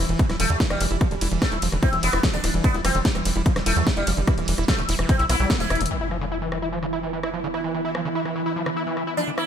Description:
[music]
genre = psychedelic trance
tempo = 147 BPM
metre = 4/4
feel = straight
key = E phrygian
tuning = A4 = 440 Hz
[part]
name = pulsing gated texture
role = sustained chords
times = 0.0-9.5 s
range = E3 to E4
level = -30 LUFS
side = right 3 dB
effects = chorus, built-in reverb, sidechain pumping
[part]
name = screaming distorted acid line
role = riff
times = 0.0-9.4 s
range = D3 to E4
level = -29 LUFS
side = moving between left 5 dB and right 6 dB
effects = distortion, chorus, auto-pan, sidechain pumping, ping-pong delay
[part]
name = tight sequencer bass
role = bass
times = 0.0-5.9 s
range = D1 to E2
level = -25 LUFS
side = equal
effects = tube saturation
[part]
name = big-room dance drum kit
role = drums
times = 0.1-9.5 s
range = hi-hat, ride cymbal, rim click, snare drum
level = -28 LUFS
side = equal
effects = studio reverb
[part]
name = electronic kick drum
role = drums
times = 0.2-5.6 s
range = none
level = -22 LUFS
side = equal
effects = studio reverb
[part]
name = sitar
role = melody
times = 0.4-5.8, 9.2-9.5 s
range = G3 to E4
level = -27 LUFS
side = left 1 dB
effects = phaser, sidechain pumping, ping-pong delay
[part]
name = impact and riser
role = sound effects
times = 5.9-9.5 s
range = none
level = -34 LUFS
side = equal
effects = none
[part]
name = ethereal airy pad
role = texture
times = 7.1-9.5 s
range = B3 to B5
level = -34 LUFS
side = left 1 dB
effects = ensemble chorus, built-in reverb, sidechain pumping
[sound]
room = light reverb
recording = none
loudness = -20 LUFS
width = side -8 dB against mid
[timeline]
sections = 0.0-5.9 A section; 5.9-9.5 B section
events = drop 0.0-5.9; band accent 5.5; drum fill 5.7; impact 5.9-7.5; filter sweep on acid bass 5.9-9.5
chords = 0.0 E5

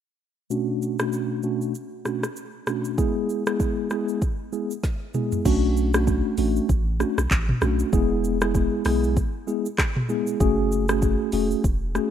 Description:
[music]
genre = afrobeats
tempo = 97 BPM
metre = 4/4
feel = swing 58% on 16ths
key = B dorian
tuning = A4 = 440 Hz
[part]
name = mellow tine electric piano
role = accompaniment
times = 0.5-12.1 s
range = B2 to G#4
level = -24 LUFS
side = left 1 dB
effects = medium stereo tremolo, low-pass filter
[part]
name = afro-pop drum kit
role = drums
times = 0.5-12.1 s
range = crash cymbal, handclaps, hi-hat, kick drum, rim click, shaker, snare drum, toms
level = -25 LUFS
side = equal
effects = none
[part]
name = punchy sub bass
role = bass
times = 5.5-12.0 s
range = E1 to B1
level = -25 LUFS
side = equal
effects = none
[sound]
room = light reverb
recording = rough home demo mix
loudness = -21 LUFS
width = side -9 dB against mid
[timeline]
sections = 0.5-5.5 A section; 5.5-12.1 B section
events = filter sweep on tine electric piano 0.5-5.5; drum fill 4.8-5.5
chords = 0.5 Bm7; 3.0 E; 5.5 Bm7; 7.9 E; 10.4 F#madd9

